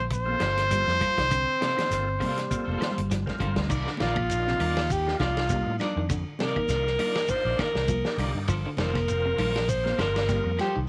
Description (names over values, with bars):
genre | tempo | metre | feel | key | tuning
afrobeat | 100 BPM | 4/4 | swing 56% on 16ths | C dorian | A4 = 440 Hz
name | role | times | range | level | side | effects
clear trumpet | melody | 0.0-3.1 s | C5 | -28 LUFS | equal | none
electric guitar at the edge of break-up | arpeggios | 0.0-10.9 s | C3 to G3 | -39 LUFS | equal | none
fretless electric bass | bass | 0.0-10.9 s | F1 to A2 | -32 LUFS | equal | none
warm soul drum kit | drums | 0.1-10.7 s | crash cymbal, hi-hat, kick drum, ride cymbal, snare drum | -35 LUFS | equal | none
congas | percussion | 0.1-10.8 s | none | -37 LUFS | equal | none
shekere | percussion | 0.1-10.8 s | none | -37 LUFS | equal | none
overdriven tonewheel organ | accompaniment | 0.3-10.5 s | Bb3 to Bb4 | -40 LUFS | equal | slow rotary speaker, chorus vibrato
electric guitar at the edge of break-up | stabs | 0.4-10.8 s | Bb3 to D5 | -40 LUFS | equal | tremolo
claves | percussion | 0.4-10.8 s | none | -45 LUFS | equal | none
warm bass trombone | second line | 0.7-3.4 s | F3 to C4 | -40 LUFS | equal | none
breathy alto saxophone | melody | 4.0-10.8 s | D4 to C5 | -30 LUFS | equal | none
room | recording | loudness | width
light reverb | none | -26 LUFS | mono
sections
0.0-3.7 A section; 3.7-10.9 B section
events
drum fill 2.5-3.7; alto saxophone solo 3.7-10.9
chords
0.0 Gm11; 3.7 Cm11; 8.5 Gm11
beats
0.11 0.71 | 1.31 1.91 2.50 3.10 | 3.70 4.30 4.90 5.50 | 6.10 6.70 7.30 7.89 | 8.49 9.09 9.69 10.29